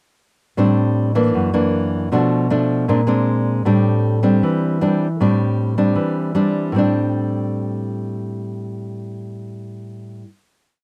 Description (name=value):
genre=bossa nova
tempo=156 BPM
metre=4/4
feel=straight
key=A minor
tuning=A4 = 440 Hz
part: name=nylon-string guitar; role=solo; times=0.6-10.3 s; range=F#2 to D4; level=-19 LUFS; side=equal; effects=none
room=moderate booth ambience, RT60 0.2 s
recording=dry, close 1970s-style studio recording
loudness=-18 LUFS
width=mono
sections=0.6-6.7 A section; 6.7-9.8 final chord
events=none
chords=0.6 Am7; 1.3 F#aug7; 2.1 Bm7b5; 2.9 Bb9; 3.7 Am7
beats=| 0.57 0.96 1.34 1.73 | 2.11 2.50 2.89 3.27 | 3.66 4.04 4.43 4.82 | 5.20 5.59 5.97 6.36 | 6.75 7.13 7.52 7.90 | 8.29 8.67 9.05 9.44